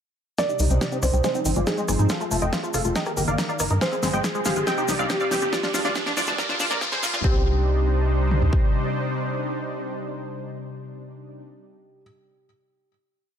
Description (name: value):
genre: uplifting trance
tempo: 140 BPM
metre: 4/4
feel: straight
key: C minor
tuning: A4 = 439 Hz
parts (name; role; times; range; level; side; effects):
- supersaw stab; melody; 0.4-11.4 s; D4 to G5; -29 LUFS; right 1 dB; sidechain pumping, low-pass filter, digital delay
- felt-muted upright piano; second line; 0.4-12.0 s; G4 to D5; -30 LUFS; equal; digital delay
- analog string pad; sustained chords; 0.4-11.4 s; C3 to F4; -30 LUFS; equal; ensemble chorus, sidechain pumping
- liquid acid bass; arpeggios; 0.4-7.4 s; Ab3 to G4; -30 LUFS; left 4 dB; wide subtle chorus, cassette tape, sidechain pumping, digital delay
- big-room dance drum kit; drums; 0.4-8.6 s; kick drum, toms; -24 LUFS; equal; high-pass filter on kick, small room ambience, high-pass filter on toms
- big-room dance drum kit; drums; 0.4-7.2 s; hi-hat, rim click, snare drum; -29 LUFS; right 1 dB; small room ambience
- cabasa; percussion; 0.4-7.2 s; none; -34 LUFS; left 2 dB; none
- riser; sound effects; 3.0-7.2 s; none; -33 LUFS; equal; none
- tight sequencer bass; bass; 0.6-8.5 s; F1 to Bb2; -24 LUFS; equal; sidechain pumping
room: light reverb, digital ambience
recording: dark, warm production, high-pass filter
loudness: -21 LUFS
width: side -8 dB against mid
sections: 0.4-7.2 build; 7.2-10.7 final chord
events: build-up 0.4-7.2; drum fill 0.4-7.2; filter sweep on supersaw synth 0.4-7.2; filter sweep on acid bass 0.4-7.2; filter sweep 0.4-7.2; riser 3.0-7.2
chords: 0.4 Cmadd9; 1.2 Ab6; 2.1 F; 3.0 Eb/G; 3.8 Ab6; 4.7 Cmadd9; 5.5 Ddim; 6.4 Bb7; 7.2 Cmadd9